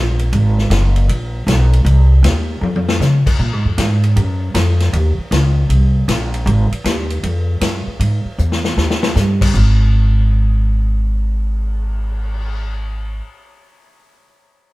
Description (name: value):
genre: jazz, big band swing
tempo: 156 BPM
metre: 4/4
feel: swing 66% on 8ths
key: unclear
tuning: A4 = 441 Hz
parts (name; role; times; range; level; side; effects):
- upright bass; bass; 0.0-13.2 s; Gb1 to Db3; -14 LUFS; equal; none
- swinging big-band drum kit; drums; 0.2-12.5 s; crash cymbal, cymbal swell, hi-hat, kick drum, ride cymbal, snare drum, toms; -21 LUFS; left 2 dB; none
room: little or no reverb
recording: heard from further back in the room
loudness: -13 LUFS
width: side -19 dB against mid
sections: 0.0-9.5 A section; 9.5-12.6 B section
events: drum fill 2.6-3.0, 8.4-9.2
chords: none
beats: | 0.33 0.71 1.09 1.48 | 1.86 2.24 2.63 3.01 | 3.39 3.78 4.16 4.54 | 4.93 5.31 5.70 6.08 | 6.46 6.85 7.23 7.62 | 8.00 8.38 8.77 9.15 | 9.54 9.92 10.31 10.69 | 11.08 11.46 11.85 12.23